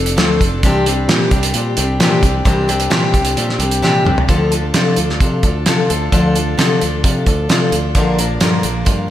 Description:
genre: folk rock and heartland rock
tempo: 131 BPM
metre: 4/4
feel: straight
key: D minor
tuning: A4 = 441 Hz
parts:
  - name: picked steel-string acoustic guitar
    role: accompaniment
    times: 0.0-9.1 s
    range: Bb2 to Bb4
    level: -16 LUFS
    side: left 2 dB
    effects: none
  - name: fingered electric bass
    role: bass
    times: 0.0-9.1 s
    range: F1 to C3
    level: -19 LUFS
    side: equal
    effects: none
  - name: cloth-damped thuddy drum kit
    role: drums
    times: 0.1-9.0 s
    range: hi-hat, kick drum, snare drum, toms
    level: -16 LUFS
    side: right 1 dB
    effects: none
room: moderate lush hall reverb, RT60 2.1 s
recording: big arena sound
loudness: -12 LUFS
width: side -12 dB against mid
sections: 0.0-4.3 A section; 4.3-9.1 B section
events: drum fill 3.8-4.3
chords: 0.0 F6; 0.6 Cadd9; 4.3 Dm; 8.0 Bb

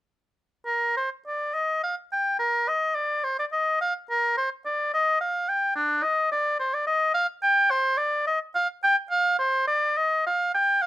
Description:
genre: classical, baroque-style fantasia for unaccompanied oboe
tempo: 106 BPM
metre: 3/4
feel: rubato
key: unclear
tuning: A4 = 444 Hz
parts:
  - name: clear oboe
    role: solo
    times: 0.7-10.9 s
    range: D4 to G5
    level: -22 LUFS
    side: equal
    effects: none
room: light reverb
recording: none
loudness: -22 LUFS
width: side -14 dB against mid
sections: 0.6-10.9 A section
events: none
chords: none

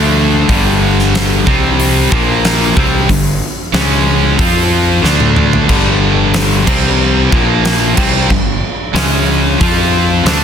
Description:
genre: hard rock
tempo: 92 BPM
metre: 4/4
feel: straight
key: G minor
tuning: A4 = 440 Hz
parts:
  - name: high-gain distorted guitar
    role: riff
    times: 0.0-10.4 s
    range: G2 to F4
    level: -15 LUFS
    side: right 11 dB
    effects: distortion
  - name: overdriven electric guitar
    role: riff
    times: 0.0-10.4 s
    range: G2 to F4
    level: -16 LUFS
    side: left 10 dB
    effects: none
  - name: fuzz fingered electric bass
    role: bass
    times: 0.0-10.4 s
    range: G1 to F2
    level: -16 LUFS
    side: equal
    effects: overdrive
  - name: huge arena drum kit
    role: drums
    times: 0.5-10.4 s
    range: crash cymbal, hi-hat, kick drum, snare drum, toms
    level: -15 LUFS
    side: equal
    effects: none
room: light reverb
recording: dense, heavily limited modern master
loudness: -9 LUFS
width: side -8 dB against mid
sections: 0.0-10.4 A section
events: drum fill 5.0-5.7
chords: 0.5 G5; 1.5 C5; 2.1 Bb5; 2.8 G5; 3.7 C#5; 4.4 F5; 5.0 D5; 5.7 G5; 6.7 C5; 7.3 Bb5; 8.0 G5; 9.0 C#5; 9.6 F5

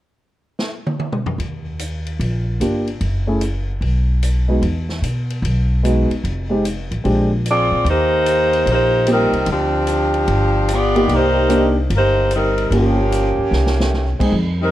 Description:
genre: jazz, big band swing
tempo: 148 BPM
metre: 4/4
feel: swing 66% on 8ths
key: Eb major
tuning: A4 = 441 Hz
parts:
  - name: swinging big-band drum kit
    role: drums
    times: 0.6-14.3 s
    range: crash cymbal, hi-hat, kick drum, ride cymbal, snare drum, toms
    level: -28 LUFS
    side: equal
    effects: none
  - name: upright bass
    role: bass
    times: 1.4-14.7 s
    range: F1 to B2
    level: -19 LUFS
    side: equal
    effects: none
  - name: warm grand piano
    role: accompaniment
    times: 2.6-14.3 s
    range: Ab3 to D5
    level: -19 LUFS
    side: equal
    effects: none
  - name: clear saxophone section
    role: melody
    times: 7.5-14.7 s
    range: F3 to D5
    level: -16 LUFS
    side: equal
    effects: none
room: light reverb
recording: worn, warbling old tape, cassette tape, warbly pitch drift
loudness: -15 LUFS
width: side -14 dB against mid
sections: 0.0-1.4 A section; 1.4-7.9 B section; 7.9-14.7 C section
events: drum fill 0.6-1.4, 13.5-13.9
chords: 0.0 N.C.; 1.4 Ebmaj9; 3.0 Gbm7; 3.8 B; 4.6 Emaj7; 6.2 Fm9; 7.0 Bb13; 7.9 Eb6; 9.5 G7sus4/D; 10.3 G7b13; 11.1 Cm7; 12.7 Gm7b5; 13.5 C5

